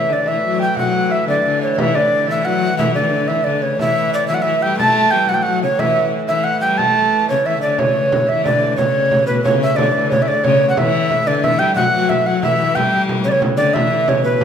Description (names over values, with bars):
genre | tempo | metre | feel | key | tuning
medieval dance | 120 BPM (dotted quarters) | 6/8 | straight | unclear | A4 = 435 Hz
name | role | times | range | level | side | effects
mellow tenor recorder | melody | 0.0-14.4 s | B4 to A5 | -16 LUFS | right 1 dB | none
Celtic harp | second line | 0.0-14.4 s | B4 to A5 | -24 LUFS | right 4 dB | none
rich viola da gamba | second line | 0.0-14.4 s | B2 to A3 | -21 LUFS | left 6 dB | none
dark hurdy-gurdy | drone | 0.0-14.4 s | A2 to E3 | -26 LUFS | right 1 dB | none
frame drum | percussion | 0.3-14.4 s | none | -24 LUFS | right 2 dB | none
room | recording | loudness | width
wet recital hall reverb, RT60 1.6 s | minimal, uncompressed stereo recording | -14 LUFS | side -8 dB against mid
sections
0.0-7.8 A section; 7.8-14.4 B section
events
none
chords
none